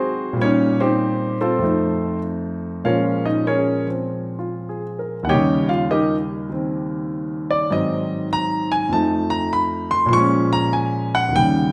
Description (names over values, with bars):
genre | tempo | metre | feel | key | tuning
solo jazz | 99 BPM | 4/4 | swing 67% on 8ths, rubato | unclear | A4 = 440 Hz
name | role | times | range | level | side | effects
warm concert grand piano | solo | 0.0-11.7 s | Eb2 to Db6 | -20 LUFS | equal | none
room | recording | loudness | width
moderate recital hall reverb, RT60 1.5 s | recorded in a church or concert hall | -21 LUFS | mono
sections
0.0-11.7 A section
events
grand piano solo 0.0-11.7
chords
0.4 Cm7; 1.6 F7; 2.8 Bbm7; 5.3 Eb7; 7.7 Ab7; 8.9 F7; 10.1 Bbm7